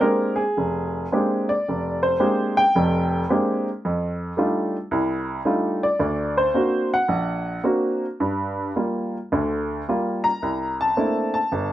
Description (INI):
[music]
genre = solo jazz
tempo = 110 BPM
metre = 4/4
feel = swing 67% on 8ths, rubato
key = unclear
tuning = A4 = 440 Hz
[part]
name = clear upright piano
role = solo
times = 0.0-11.7 s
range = F1 to Bb5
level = -20 LUFS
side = equal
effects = none
[sound]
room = moderate studio reverb, RT60 0.6 s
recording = rough home demo mix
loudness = -20 LUFS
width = side -13 dB against mid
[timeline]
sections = 0.0-11.7 A section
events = upright piano solo 0.0-11.7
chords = 0.0 Bb13; 3.8 F13; 6.0 Daug7; 8.2 Gm7; 10.4 C13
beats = 0.01 0.56 1.11 | 1.66 2.20 2.75 3.29 | 3.83 4.37 4.91 5.46 | 6.00 6.55 7.10 7.66 | 8.22 8.78 9.33 9.88 | 10.43 10.98 11.53